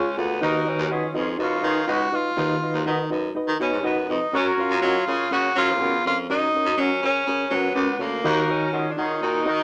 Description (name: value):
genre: soul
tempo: 123 BPM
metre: 4/4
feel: straight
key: unclear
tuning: A4 = 440 Hz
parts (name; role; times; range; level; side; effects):
- breathy tenor saxophone; melody; 0.0-9.6 s; Bb3 to Gb4; -27 LUFS; equal; none
- reed electric piano; accompaniment; 0.0-9.6 s; Eb3 to Gb5; -29 LUFS; equal; fast tremolo
- electric guitar through a small old amp; stabs; 0.0-8.8 s; Db4 to Eb5; -32 LUFS; equal; none
- edgy baritone saxophone; bass; 0.0-9.6 s; Db2 to Gb3; -29 LUFS; equal; none
- warm horn section; second line; 0.4-9.6 s; Bb3 to Bb4; -29 LUFS; equal; none
room: moderate studio reverb, RT60 0.8 s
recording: none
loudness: -23 LUFS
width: mono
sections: 0.0-9.6 A section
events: none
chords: 0.4 Cb; 4.3 Gb; 8.2 Ebm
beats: | 0.42 0.91 1.40 1.89 | 2.38 2.87 3.35 3.85 | 4.33 4.82 5.31 5.80 | 6.29 6.78 7.27 7.76 | 8.25 8.74 9.23